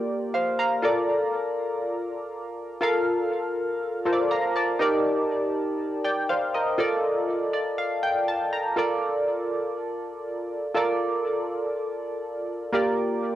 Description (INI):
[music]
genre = pop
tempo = 121 BPM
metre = 4/4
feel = straight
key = Bb major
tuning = A4 = 438 Hz
[part]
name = chorused retro synth keys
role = solo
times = 0.0-13.4 s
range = Bb3 to Bb5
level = -24 LUFS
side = equal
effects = cassette tape, analog delay
[sound]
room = wet booth ambience, RT60 0.3 s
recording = home recording on cassette, faint mains hum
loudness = -23 LUFS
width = side -13 dB against mid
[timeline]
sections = 0.0-8.8 A section; 8.8-13.4 B section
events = synth keys fill 7.3-8.8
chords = 0.0 Gm7/Bb; 0.8 Bbmaj7; 4.8 Ebmaj7; 6.8 Bbmaj7; 12.7 Gm7/Bb